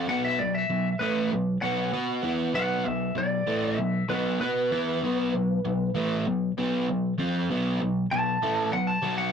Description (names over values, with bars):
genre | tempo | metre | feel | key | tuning
rock | 97 BPM | 4/4 | straight | B minor | A4 = 440 Hz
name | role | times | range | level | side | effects
lightly driven lead guitar | melody | 0.0-9.3 s | B4 to A5 | -28 LUFS | equal | none
overdriven semi-hollow guitar | riff | 0.0-9.3 s | A2 to B4 | -26 LUFS | equal | none
room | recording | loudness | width
wet booth ambience, RT60 0.2 s | rough rehearsal-room recording, tube saturation | -24 LUFS | side -7 dB against mid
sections
0.0-9.3 A section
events
lead electric guitar solo 0.0-9.3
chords
0.0 B5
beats
| 0.07 0.69 1.31 1.93 | 2.54 3.16 3.78 4.40 | 5.02 5.64 6.25 6.87 | 7.49 8.11 8.72